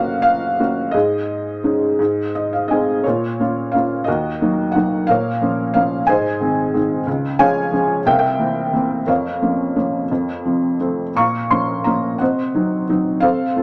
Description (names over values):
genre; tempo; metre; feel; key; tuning
classical, lyrical solo piano; 59 BPM (dotted quarters); 6/8; rubato; Bb minor from 3.0 s; A4 = 440 Hz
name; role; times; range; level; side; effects
felt-muted upright piano; solo; 0.0-13.6 s; C2 to Db6; -18 LUFS; equal; none
room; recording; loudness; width
moderate small room reverb, RT60 0.5 s; none; -19 LUFS; mono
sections
0.0-3.0 A section; 3.0-13.6 B section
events
felt piano fill 2.0-3.0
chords
0.0 Gb; 0.9 Absus4; 2.0 Ab; 3.0 Bbm; 4.1 Ebm; 5.1 Bbm; 6.1 Ab; 7.1 Db; 8.1 C7; 9.1 Bbm/F; 10.1 F; 11.2 Bbm; 12.2 Cdim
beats
| 0.95 1.99 | 3.04 4.07 | 5.08 6.08 | 7.06 8.06 | 9.07 10.10 | 11.15 12.20 | 13.23